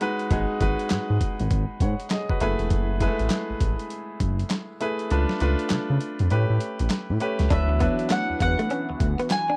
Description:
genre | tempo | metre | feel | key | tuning
R&B, new jack swing | 100 BPM | 4/4 | swing 62% on 16ths | F# dorian | A4 = 440 Hz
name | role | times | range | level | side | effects
clear grand piano | accompaniment | 0.0-9.6 s | F#3 to B5 | -30 LUFS | equal | none
dusty soul sampler-style drum kit | drums | 0.0-9.5 s | handclaps, hi-hat, kick drum, snare drum | -29 LUFS | equal | overdrive
smooth gliding synth bass | bass | 0.3-9.2 s | E1 to C#3 | -26 LUFS | equal | none
mandolin | melody | 7.5-9.6 s | E5 to G#5 | -29 LUFS | equal | none
sweeping resonant pad | sustained chords | 7.5-9.6 s | E3 to F#4 | -34 LUFS | equal | chorus
direct-recorded clean electric guitar | riff | 7.5-9.6 s | A3 to D4 | -31 LUFS | equal | lush chorus
room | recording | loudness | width
little or no reverb | dry, close 1970s-style studio recording | -25 LUFS | mono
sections
0.0-7.5 A section; 7.5-9.6 B section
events
grand piano fill 1.8-2.7; kick muted 5.1-7.5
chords
0.0 G#m7; 2.4 F#m11; 5.1 C#7b9b13; 6.3 A9; 7.5 D69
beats
| 0.31 0.91 1.51 2.11 | 2.71 3.31 3.91 4.51 | 5.11 5.71 6.31 6.91 | 7.51 8.11 8.71 9.31

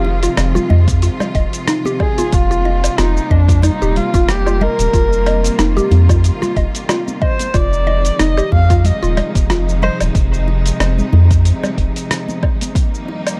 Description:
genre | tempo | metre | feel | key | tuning
organic downtempo | 92 BPM | 4/4 | swing 56% on 16ths | F minor | A4 = 440 Hz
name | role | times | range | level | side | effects
warm kamancheh | melody | 0.0-10.0 s | D4 to F5 | -23 LUFS | equal | vintage 12-bit sampler grit, tape echo
clear symphonic string section | sustained chords | 0.0-13.4 s | F2 to F4 | -26 LUFS | equal | sidechain pumping
mallet-like synth pluck | arpeggios | 0.0-9.9 s | Eb4 to Eb5 | -24 LUFS | equal | chorus, phaser, tape echo
round analog bass | bass | 0.0-11.9 s | Eb1 to F2 | -16 LUFS | equal | sidechain pumping
bongos and congas | percussion | 0.0-13.2 s | none | -27 LUFS | equal | none
dusty soul sampler-style drum kit | drums | 0.2-13.4 s | cabasa, hi-hat, rim click, woodblock | -24 LUFS | equal | none
electronic kick drum | drums | 0.9-12.9 s | none | -19 LUFS | equal | overdrive
room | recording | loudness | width
studio reverb | dark, warm production | -15 LUFS | mono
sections
0.0-13.4 A section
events
none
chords
0.0 Fm7; 2.3 Cm7; 7.5 Fm7; 12.8 Cm7/F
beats
0.37 1.02 1.68 | 2.33 2.98 3.63 4.29 | 4.94 5.59 6.24 6.89 | 7.55 8.20 8.85 9.50 | 10.15 10.81 11.46 12.11 | 12.76

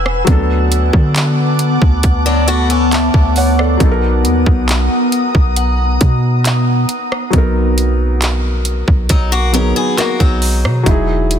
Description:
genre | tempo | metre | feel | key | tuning
contemporary R&B | 68 BPM | 4/4 | straight | B major | A4 = 440 Hz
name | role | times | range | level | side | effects
felt-muted upright piano | accompaniment | 0.0-11.4 s | F#3 to A5 | -20 LUFS | equal | none
glassy FM pad | sustained chords | 0.0-7.3 s | B3 to E6 | -17 LUFS | left 1 dB | ensemble chorus, built-in reverb, sidechain pumping
warm 808-style bass | bass | 0.0-11.4 s | E1 to D3 | -15 LUFS | equal | none
trap drum kit | drums | 0.1-11.4 s | handclaps, hi-hat, kick drum, rim click | -15 LUFS | equal | none
picked swing-style acoustic guitar | arpeggios | 2.3-3.8, 9.1-10.8 s | F#3 to A#4 | -19 LUFS | left 4 dB | tape echo
glassy synth bell | texture | 5.6-6.4 s | F#5 | -32 LUFS | left 4 dB | none
room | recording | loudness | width
little or no reverb | dense, heavily limited modern master | -11 LUFS | side -9 dB against mid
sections
0.0-11.4 A section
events
none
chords
0.3 D6; 3.8 Bmaj7; 10.9 Emaj9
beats
| 0.27 1.16 2.04 2.92 | 3.80 4.69 5.57 6.45 | 7.33 8.21 9.10 9.98 | 10.86

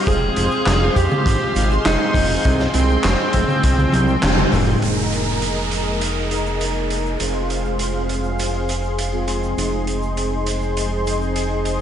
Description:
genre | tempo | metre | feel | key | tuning
synthwave | 101 BPM | 4/4 | straight | F minor | A4 = 442 Hz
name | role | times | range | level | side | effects
warm tenor saxophone | melody | 0.0-4.7 s | C4 to Ab4 | -23 LUFS | equal | slapback echo, digital delay
FM electric piano with soft pad layer | second line | 0.0-4.7 s | C4 to Ab4 | -28 LUFS | right 3 dB | none
warm analog pad | sustained chords | 0.0-11.8 s | Ab3 to C6 | -26 LUFS | left 1 dB | chorus, sidechain pumping
mellow synth brass | stabs | 0.0-11.8 s | Ab3 to C5 | -25 LUFS | equal | chorus, slapback echo, tape echo
fat analog bass | bass | 0.1-11.8 s | F1 to F2 | -22 LUFS | equal | none
kick drum | drums | 0.1-3.8 s | none | -22 LUFS | equal | none
raw garage drum kit | drums | 0.1-11.8 s | handclaps, hi-hat, shaker, snare drum, toms | -23 LUFS | right 1 dB | none
downlifter | sound effects | 4.8-9.6 s | none | -29 LUFS | right 2 dB | none
room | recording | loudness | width
moderate lush hall reverb, RT60 2.8 s | big arena sound, nothing above 10.8 kHz | -17 LUFS | side -9 dB against mid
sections
0.0-4.8 A section; 4.8-11.8 B section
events
drum fill 3.9-4.8; band accent 4.2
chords
0.1 Fm; 4.8 Ebsus4/F; 7.2 Fm; 9.6 Ab/F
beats
| 0.07 0.67 1.26 1.85 | 2.45 3.04 3.64 4.23 | 4.82 5.42 6.01 6.61 | 7.20 7.79 8.39 8.98 | 9.58 10.17 10.77 11.36

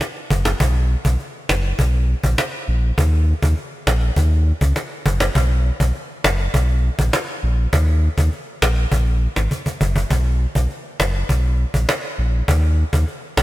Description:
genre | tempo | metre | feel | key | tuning
dancehall | 101 BPM | 4/4 | straight | unclear | A4 = 440 Hz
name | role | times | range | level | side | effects
cajon | drums | 0.0-13.4 s | none | -21 LUFS | equal | none
sub bass with octave | bass | 0.3-13.4 s | Gb1 to Eb2 | -17 LUFS | equal | none
room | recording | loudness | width
light reverb, studio reverb | bright 1980s-style digital production | -16 LUFS | side -17 dB against mid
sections
0.0-10.1 A section; 10.1-13.4 B section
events
drum fill 9.5-10.1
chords
none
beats
0.01 | 0.60 1.19 1.79 2.38 | 2.98 3.57 4.17 4.76 | 5.35 5.95 6.54 7.13 | 7.73 8.32 8.92 9.51 | 10.11 10.70 11.29 11.89 | 12.48 13.08

